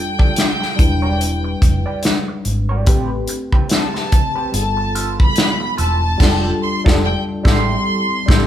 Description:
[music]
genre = lush 1970s-style soul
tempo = 72 BPM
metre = 4/4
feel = swing 58% on 16ths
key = A minor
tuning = A4 = 439 Hz
[part]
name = warm studio violin section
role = melody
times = 0.0-8.5 s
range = G5 to C6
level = -22 LUFS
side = equal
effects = none
[part]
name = tine electric piano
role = accompaniment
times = 0.0-8.5 s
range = G3 to B4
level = -23 LUFS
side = left 1 dB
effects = phaser
[part]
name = electric guitar through a small old amp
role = riff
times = 0.2-8.5 s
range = C4 to E5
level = -29 LUFS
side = right 4 dB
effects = wah
[part]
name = modern studio drum kit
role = drums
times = 0.2-8.5 s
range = crash cymbal, hi-hat, kick drum, snare drum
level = -15 LUFS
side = equal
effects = none
[part]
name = vintage muted fingered electric bass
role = bass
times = 0.8-8.5 s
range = E1 to A1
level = -21 LUFS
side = equal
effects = none
[sound]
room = moderate large studio reverb, RT60 1.3 s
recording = band playing live in one room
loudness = -14 LUFS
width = side -11 dB against mid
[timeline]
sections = 0.0-8.5 A section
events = band accent 6.2-8.5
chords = 0.0 F69; 0.8 Em7; 2.9 Am9; 4.5 G9; 6.2 F69; 7.5 Am7

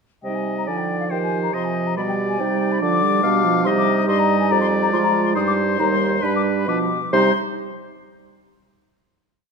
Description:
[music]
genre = quick classical-period movement for wind quintet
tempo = 139 BPM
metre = 4/4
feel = uneven beats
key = C minor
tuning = A4 = 443 Hz
[part]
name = mellow concert flute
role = melody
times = 0.2-7.4 s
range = F5 to Eb6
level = -23 LUFS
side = left 8 dB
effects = none
[part]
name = warm oboe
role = second line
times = 0.2-7.3 s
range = B4 to F5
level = -25 LUFS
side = left 4 dB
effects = none
[part]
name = clear clarinet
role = accompaniment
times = 0.2-7.3 s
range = D4 to G4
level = -26 LUFS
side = right 8 dB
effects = none
[part]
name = dark French horn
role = accompaniment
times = 0.2-7.3 s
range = F3 to Ab3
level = -23 LUFS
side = right 2 dB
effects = none
[part]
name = mellow bassoon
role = bass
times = 0.2-7.3 s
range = Eb2 to F3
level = -24 LUFS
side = right 2 dB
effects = none
[sound]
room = moderate scoring stage reverb, RT60 1.9 s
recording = none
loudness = -17 LUFS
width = side -5 dB against mid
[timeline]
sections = 0.2-7.1 A section; 7.1-8.9 final chord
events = none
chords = 0.2 Cm; 2.0 G/B; 3.7 Cm; 4.5 Fm; 5.4 Cm/G; 6.2 G7; 7.1 Cm

